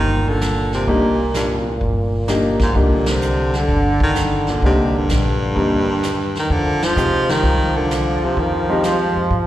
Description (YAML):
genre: jazz, small-group swing and bop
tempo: 128 BPM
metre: 4/4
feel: swing 68% on 8ths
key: C minor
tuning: A4 = 439 Hz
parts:
  - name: breathy baritone saxophone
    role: melody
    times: 0.0-9.3 s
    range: G2 to F3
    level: -20 LUFS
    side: equal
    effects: slapback echo
  - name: warm trombone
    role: second line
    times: 0.0-9.5 s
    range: Bb2 to F3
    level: -22 LUFS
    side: right 2 dB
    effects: slapback echo
  - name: upright bass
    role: bass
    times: 0.0-9.5 s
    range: G1 to C3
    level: -21 LUFS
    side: equal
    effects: none
  - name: vintage brush drum kit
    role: drums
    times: 0.4-9.5 s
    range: brushed snare drum, hi-hat, kick drum, ride cymbal, snare drum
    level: -24 LUFS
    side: equal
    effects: none
  - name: warm baby grand piano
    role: accompaniment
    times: 0.9-9.3 s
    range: Ab3 to G4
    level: -20 LUFS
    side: left 2 dB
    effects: slapback echo
room: light reverb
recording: live gig heard through the venue's PA, recital hall reverb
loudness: -15 LUFS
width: side -13 dB against mid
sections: 0.0-9.5 A section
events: band accent 3.0, 6.7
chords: 0.0 Cm9; 6.5 Fm9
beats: 0.41 | 0.88 1.35 1.82 2.29 | 2.76 3.22 3.69 4.16 | 4.63 5.10 5.57 6.03 | 6.50 6.97 7.44 7.91 | 8.38 8.85 9.31